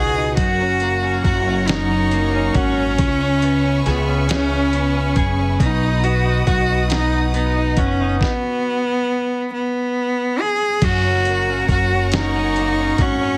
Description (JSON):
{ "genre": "six-eight pop ballad", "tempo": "46 BPM (dotted quarters)", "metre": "6/8", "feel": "straight", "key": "B major", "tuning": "A4 = 440 Hz", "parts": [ { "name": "rich cello", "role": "melody", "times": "0.0-13.4 s", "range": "B3 to G#4", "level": "-22 LUFS", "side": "equal", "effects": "none" }, { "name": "direct-recorded clean electric guitar", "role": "accompaniment", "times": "0.0-13.4 s", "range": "F#2 to G#4", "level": "-26 LUFS", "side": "equal", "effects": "double-tracked" }, { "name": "clear studio string section", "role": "sustained chords", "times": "0.0-13.4 s", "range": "A#4 to D#6", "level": "-31 LUFS", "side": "equal", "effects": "none" }, { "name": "upright bass", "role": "bass", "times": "0.0-13.4 s", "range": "F#1 to C#2", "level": "-24 LUFS", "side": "equal", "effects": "none" }, { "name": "lo-fi sampler-style drum kit", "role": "drums", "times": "0.4-13.2 s", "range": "crash cymbal, hi-hat, kick drum, snare drum", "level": "-24 LUFS", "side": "equal", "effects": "none" } ], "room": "light reverb, small room ambience", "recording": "heavily compressed radio sound, multiband compression", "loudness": "-18 LUFS", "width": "mono", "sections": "0.0-10.8 A section; 10.8-13.4 A section", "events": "stop 8.2-10.8", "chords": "0.4 F#; 3.0 C#m7; 5.6 B; 10.8 F#", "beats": "| 0.38 1.68 | 2.99 4.29 | 5.60 6.90 | 8.21 9.51 | 10.81 12.12" }